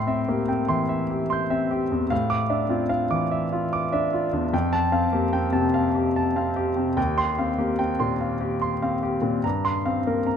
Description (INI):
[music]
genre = classical, impressionist solo piano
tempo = 73 BPM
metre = 3/4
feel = rubato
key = F major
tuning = A4 = 437 Hz
[part]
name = clear grand piano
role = solo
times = 0.0-10.4 s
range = Eb2 to G6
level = -21 LUFS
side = equal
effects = none
[sound]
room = light reverb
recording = close, detailed microphones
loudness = -21 LUFS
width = side -8 dB against mid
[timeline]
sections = 0.0-10.4 A section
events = none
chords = 0.0 Am7; 2.1 Dmadd9/A; 4.5 Fadd9; 7.0 Eb69; 9.4 Gm7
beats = 0.48 1.30 | 2.11 2.91 3.72 | 4.53 5.33 6.14 | 6.97 7.78 8.61 | 9.44 10.28